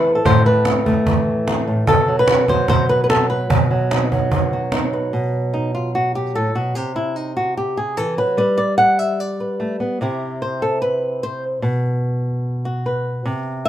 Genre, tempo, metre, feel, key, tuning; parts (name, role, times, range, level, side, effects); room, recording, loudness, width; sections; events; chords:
flamenco; 148 BPM; 4/4; straight; B phrygian dominant; A4 = 440 Hz
flamenco guitar; melody; 0.0-13.7 s; A2 to F#5; -17 LUFS; equal
cajon; percussion; 0.3-4.9 s; -20 LUFS; right 2 dB
moderate studio reverb, RT60 0.6 s; minimal, uncompressed stereo recording; -16 LUFS; side -11 dB against mid
0.0-5.1 A section; 5.1-13.7 B section
nylon-string guitar solo 5.1-13.7
0.0 Am; 1.9 B5; 3.5 B; 5.1 B5; 6.8 C; 8.4 G; 10.0 C; 11.6 B5